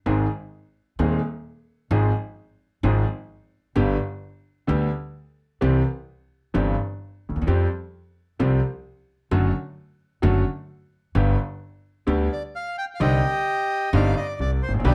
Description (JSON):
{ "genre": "tango", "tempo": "130 BPM", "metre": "4/4", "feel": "rubato", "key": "unclear", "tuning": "A4 = 440 Hz", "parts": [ { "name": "warm concert grand piano", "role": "accompaniment", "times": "0.1-14.9 s", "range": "Eb1 to Ab4", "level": "-26 LUFS", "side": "equal", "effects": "none" }, { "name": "upright bass", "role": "bass", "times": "0.1-14.9 s", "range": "F#1 to F2", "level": "-25 LUFS", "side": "equal", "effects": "none" }, { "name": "bandoneon", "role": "melody", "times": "12.3-14.9 s", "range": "D4 to G5", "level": "-28 LUFS", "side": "equal", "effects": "slapback echo" } ], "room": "light reverb", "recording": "none", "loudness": "-24 LUFS", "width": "mono", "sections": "0.0-13.0 A section; 13.0-14.9 B section", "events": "none", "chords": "0.1 Ab; 1.9 Fm/Ab; 3.8 G; 5.6 C; 7.5 Fsus2; 9.3 D/F#; 11.2 G; 13.0 Cmadd9" }